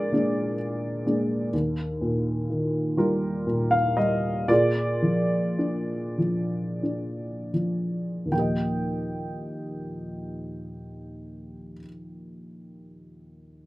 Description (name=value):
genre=classical, lyrical solo piano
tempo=24-43 BPM (dotted quarters)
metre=6/8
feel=rubato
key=Eb major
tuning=A4 = 440 Hz
part: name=dark upright piano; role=solo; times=0.0-13.7 s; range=Eb2 to G5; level=-24 LUFS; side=equal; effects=none
room=light reverb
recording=close, detailed microphones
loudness=-24 LUFS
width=side -18 dB against mid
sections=0.0-1.5 A section; 1.5-8.3 B section; 8.3-13.1 C section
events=slowing down 1.5-8.3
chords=0.0 Bb7; 1.5 Ebadd9; 4.5 Bb7; 8.3 Ebadd9